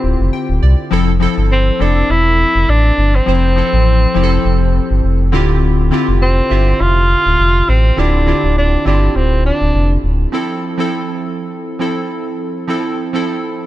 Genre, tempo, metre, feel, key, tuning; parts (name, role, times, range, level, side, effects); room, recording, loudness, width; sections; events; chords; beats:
afrobeats; 102 BPM; 4/4; swing 55% on 16ths; A4 = 440 Hz
breathy tenor saxophone; melody; 0.0-10.0 s; C4 to F4; -16 LUFS; equal
warm analog keys; accompaniment; 0.0-13.7 s; D3 to G5; -18 LUFS; left 1 dB; chorus
sub bass with octave; bass; 0.0-10.3 s; D1 to C2; -13 LUFS; equal
small room ambience; -12 LUFS; side -14 dB against mid
0.0-10.3 A section; 10.3-13.7 B section
synth keys fill 0.0-0.9
0.0 Dm11; 0.9 Fmaj7; 5.3 Dm11; 10.3 Fmaj7
0.33 | 0.92 1.51 2.10 2.69 | 3.27 3.86 4.45 5.04 | 5.63 6.21 6.80 7.39 | 7.98 8.57 9.16 9.74 | 10.33 10.92 11.51 12.10 | 12.69 13.27